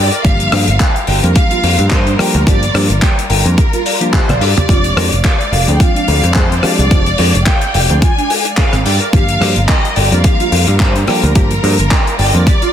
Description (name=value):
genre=nu-disco, nu disco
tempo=108 BPM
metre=4/4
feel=swing 56% on 16ths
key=unclear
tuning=A4 = 440 Hz
part: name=dark symphonic violin section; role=melody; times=0.0-12.7 s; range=Bb4 to Ab5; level=-19 LUFS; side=equal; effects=dub echo
part: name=clear symphonic string section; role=sustained chords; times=0.0-12.7 s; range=G3 to F5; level=-25 LUFS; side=left 1 dB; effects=sidechain pumping
part: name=electric guitar at the edge of break-up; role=riff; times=0.0-12.7 s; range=C4 to G5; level=-22 LUFS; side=right 2 dB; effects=lush chorus
part: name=picked electric bass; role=bass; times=0.0-12.4 s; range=F1 to G2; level=-14 LUFS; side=equal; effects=sidechain pumping
part: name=damped 70s drum kit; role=drums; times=0.1-12.7 s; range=handclaps, hi-hat, rim click, toms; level=-17 LUFS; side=left 3 dB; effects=studio ambience
part: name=barky tine electric piano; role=accompaniment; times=0.2-12.5 s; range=F3 to G5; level=-21 LUFS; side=right 1 dB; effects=overdrive, vintage 12-bit sampler grit
part: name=electronic kick drum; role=drums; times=0.2-12.6 s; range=none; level=-12 LUFS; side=equal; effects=overdrive, studio ambience
part: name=swell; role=sound effects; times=3.7-4.7 s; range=none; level=-24 LUFS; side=equal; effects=none
room=studio reverb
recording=dense, heavily limited modern master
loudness=-10 LUFS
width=side -10 dB against mid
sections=0.0-12.7 A section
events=swell 3.7-4.7; drum fill 4.1-4.7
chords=0.0 Gm7; 4.7 Fm69; 8.9 Gm7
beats=| 0.25 0.80 1.36 1.91 | 2.47 3.02 3.58 4.13 | 4.69 5.25 5.80 6.36 | 6.91 7.47 8.02 8.58 | 9.13 9.69 10.25 10.80 | 11.36 11.91 12.47